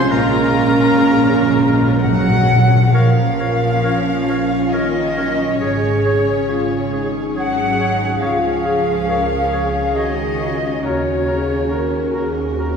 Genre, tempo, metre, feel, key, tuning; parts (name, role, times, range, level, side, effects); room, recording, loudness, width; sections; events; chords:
cinematic, emotional film score for orchestra; 68 BPM; 3/4; rubato; Bb minor; A4 = 441 Hz
warm chamber violin section; melody; 0.0-12.8 s; Bb4 to C6; -32 LUFS; left 5 dB
warm chamber violin section; second line; 0.0-12.1 s; F4 to Gb5; -26 LUFS; left 3 dB
warm oboe; second line; 0.0-12.8 s; Bb4 to Db5; -28 LUFS; equal
dark symphonic viola section; accompaniment; 0.0-12.8 s; Db3 to Ab4; -22 LUFS; right 2 dB
mellow French horn section; sustained chords; 0.0-12.8 s; Gb3 to Bb4; -21 LUFS; left 1 dB
warm symphonic cello section; bass; 0.0-12.1 s; Bb2 to Gb3; -25 LUFS; right 4 dB
warm symphonic double bass section; bass; 0.0-12.8 s; Ab1 to Eb2; -25 LUFS; right 2 dB
small flute group; second line; 0.1-12.1 s; Bb4 to Gb5; -22 LUFS; left 1 dB
timpani; percussion; 0.1-2.9 s; Bb2; -17 LUFS; equal
clear clarinet; second line; 2.9-12.7 s; Gb4 to Bb4; -28 LUFS; left 1 dB
wet concert hall reverb, RT60 2.4 s; heard from further back in the room; -14 LUFS; side -6 dB against mid
0.0-2.9 A section; 2.9-12.8 A section
timpani fill 0.1-2.9
0.1 Bbm; 5.6 Absus4; 8.2 Db; 10.8 Ebm7